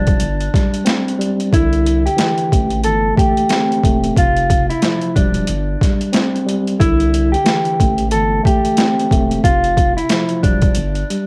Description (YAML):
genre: hip hop, boom-bap hip-hop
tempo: 91 BPM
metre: 4/4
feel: swing 59% on 16ths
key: C major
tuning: A4 = 440 Hz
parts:
  - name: mellow electric guitar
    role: melody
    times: 0.0-11.3 s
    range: D4 to A4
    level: -21 LUFS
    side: equal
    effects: high-pass filter, low-pass filter, cassette tape, tape echo
  - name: mellow tine electric piano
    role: accompaniment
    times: 0.0-11.3 s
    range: C3 to C4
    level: -22 LUFS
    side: equal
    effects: cassette tape, high-pass filter, low-pass filter
  - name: saturated sub bass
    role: bass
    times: 0.0-11.0 s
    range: E1 to C2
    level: -22 LUFS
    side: equal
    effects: none
  - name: boom bap sampler-style drum kit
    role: drums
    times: 0.1-11.3 s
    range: hi-hat, kick drum, snare drum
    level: -19 LUFS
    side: equal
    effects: overdrive, cassette tape
room: light reverb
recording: home recording on cassette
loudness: -16 LUFS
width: mono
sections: 0.0-11.3 A section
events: drum fill 10.8-11.3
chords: 0.2 Gsus4; 1.5 C69; 4.2 Fsus2; 5.5 Gsus4; 6.8 C69; 9.4 Fsus2; 10.8 G5